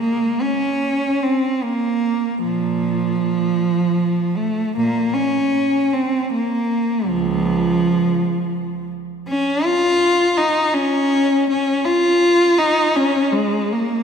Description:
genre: classical, free, expressive piece for unaccompanied cello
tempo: 49-56 BPM (dotted quarters)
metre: 6/8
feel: rubato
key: Bb minor, Db major from 9.3 s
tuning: A4 = 440 Hz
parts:
  - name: rich cello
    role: solo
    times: 0.0-14.0 s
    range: Db2 to F4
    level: -16 LUFS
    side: equal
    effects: none
room: wet church reverb, RT60 3.0 s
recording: minimal, uncompressed stereo recording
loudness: -16 LUFS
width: side -7 dB against mid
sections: 0.0-14.0 A section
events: none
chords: none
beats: | 0.00 1.23 | 2.43 3.59 | 4.76 5.93 | 7.08 8.19 | 9.28 10.38 | 11.50 12.58 | 13.71

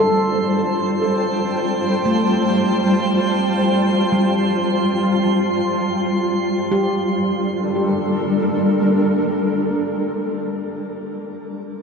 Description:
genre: ambient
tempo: free time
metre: none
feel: none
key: G minor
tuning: A4 = 441 Hz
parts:
  - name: granular cloud pad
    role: sustained chords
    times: 0.0-10.7 s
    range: G3 to A5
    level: -18 LUFS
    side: equal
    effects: built-in reverb, shimmer reverb
  - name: handpan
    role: arpeggios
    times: 0.0-10.2 s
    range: G3 to A4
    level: -23 LUFS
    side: equal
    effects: tape echo, shimmer reverb
  - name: drifting glass-harmonics texture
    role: texture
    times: 0.0-6.7 s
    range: C6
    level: -28 LUFS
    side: right 3 dB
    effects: chorus, built-in reverb, shimmer reverb
room: wet huge ambient reverb, RT60 8.8 s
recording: none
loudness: -16 LUFS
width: side -5 dB against mid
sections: 0.0-6.7 A section; 6.7-10.8 B section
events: none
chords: 0.0 F/G; 6.7 Gmadd9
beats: free time

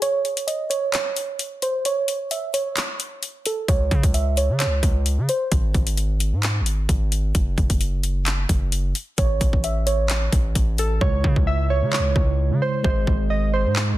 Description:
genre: hip hop, trap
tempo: 131 BPM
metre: 4/4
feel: half-time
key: C# harmonic minor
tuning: A4 = 440 Hz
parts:
  - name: warbly dusty pluck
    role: melody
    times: 0.0-5.5, 9.2-14.0 s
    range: A4 to E5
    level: -24 LUFS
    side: right 3 dB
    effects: chorus, low-pass filter, digital delay
  - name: trap drum kit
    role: drums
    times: 0.0-13.9 s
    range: handclaps, hi-hat, kick drum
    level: -22 LUFS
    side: equal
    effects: none
  - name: distorted 808-style bass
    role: bass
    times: 3.7-14.0 s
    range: F#1 to C#3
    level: -22 LUFS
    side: equal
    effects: distortion
  - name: mellow tine electric piano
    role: accompaniment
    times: 11.0-14.0 s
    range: C#3 to D#5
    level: -26 LUFS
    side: right 2 dB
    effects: medium stereo tremolo, low-pass filter
room: digital ambience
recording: dense, heavily limited modern master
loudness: -19 LUFS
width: side -15 dB against mid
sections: 0.0-14.0 A section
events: break 0.0-3.7; filter sweep 0.0-11.0; hi-hats muted 11.0-14.0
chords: 0.0 N.C.; 9.2 A; 11.0 C#m; 12.8 G#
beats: | 0.02 0.48 0.94 1.39 | 1.85 2.31 2.77 3.23 | 3.68 4.14 4.60 5.06 | 5.52 5.97 6.43 6.89 | 7.35 7.81 8.26 8.72 | 9.18 9.64 10.10 10.55 | 11.01 11.47 11.93 12.39 | 12.84 13.30 13.76

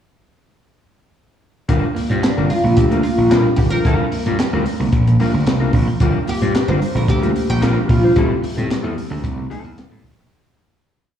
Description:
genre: funk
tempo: 111 BPM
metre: 4/4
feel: straight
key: G dorian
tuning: A4 = 436 Hz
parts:
  - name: mellow electric guitar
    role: accompaniment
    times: 1.7-10.2 s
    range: G3 to C5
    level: -22 LUFS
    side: left 4 dB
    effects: analog chorus, slapback echo
  - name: gritty slap bass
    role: bass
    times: 1.7-10.3 s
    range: G1 to A2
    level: -18 LUFS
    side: equal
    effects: overdrive
  - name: compact cocktail drum kit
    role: drums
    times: 1.7-10.2 s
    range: handclaps, hi-hat, kick drum, snare drum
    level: -20 LUFS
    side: equal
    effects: none
  - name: congas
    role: percussion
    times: 1.7-10.2 s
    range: none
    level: -28 LUFS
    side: right 9 dB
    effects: none
  - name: clean electric guitar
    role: riff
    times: 1.8-10.3 s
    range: E3 to Bb3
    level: -26 LUFS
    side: right 7 dB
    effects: wide subtle chorus, slapback echo
  - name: oud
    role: melody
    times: 2.2-8.9 s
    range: D4 to C5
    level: -20 LUFS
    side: equal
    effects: slapback echo
room: light reverb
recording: live gig heard through the venue's PA, recital hall reverb, small room reverb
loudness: -14 LUFS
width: side -9 dB against mid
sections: 1.7-10.3 groove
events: fade-out 8.2-10.3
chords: 1.7 Gm7; 8.2 Am7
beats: | 1.69 2.23 2.77 3.31 | 3.85 4.39 4.93 5.47 | 6.01 6.54 7.08 7.62 | 8.16 8.70 9.23 9.77

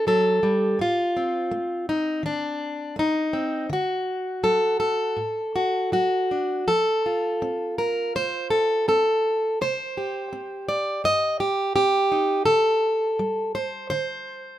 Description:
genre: folk, solo fingerstyle acoustic guitar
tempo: 83 BPM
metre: 4/4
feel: rubato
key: unclear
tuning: A4 = 442 Hz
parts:
  - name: fingerpicked plugged-in steel-string acoustic guitar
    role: solo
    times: 0.0-14.6 s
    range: G2 to Eb5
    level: -21 LUFS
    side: equal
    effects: none
room: light reverb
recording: minimal, uncompressed stereo recording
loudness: -21 LUFS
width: side -12 dB against mid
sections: 0.0-14.6 A section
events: none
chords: 0.0 D/F#; 0.8 Adim; 3.7 D; 6.7 F; 9.6 Cm; 12.5 Dsus4; 13.9 D7(no3)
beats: 0.07 | 0.80 1.52 2.24 2.97 | 3.70 4.44 5.17 5.92 | 6.67 7.42 8.15 8.88 | 9.60 10.32 11.04 11.75 | 12.47 13.19 13.92

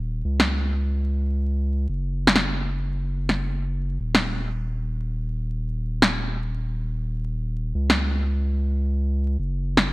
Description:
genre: UK garage, two-step garage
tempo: 128 BPM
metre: 4/4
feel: swing 65% on 16ths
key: Eb minor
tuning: A4 = 439 Hz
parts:
  - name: saturated sub bass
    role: bass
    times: 0.0-9.9 s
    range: Eb1 to Db2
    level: -24 LUFS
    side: equal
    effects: none
  - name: electronic snare drum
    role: drums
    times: 0.4-9.8 s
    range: none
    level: -20 LUFS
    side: equal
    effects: gated reverb
room: little or no reverb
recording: bright 1980s-style digital production, vinyl crackle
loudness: -22 LUFS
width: side -21 dB against mid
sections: 0.0-9.9 A section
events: none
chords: none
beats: | 0.25 0.71 1.18 1.65 | 2.12 2.59 3.06 3.53 | 4.00 4.46 4.93 5.40 | 5.87 6.34 6.81 7.28 | 7.75 8.21 8.68 9.15 | 9.62

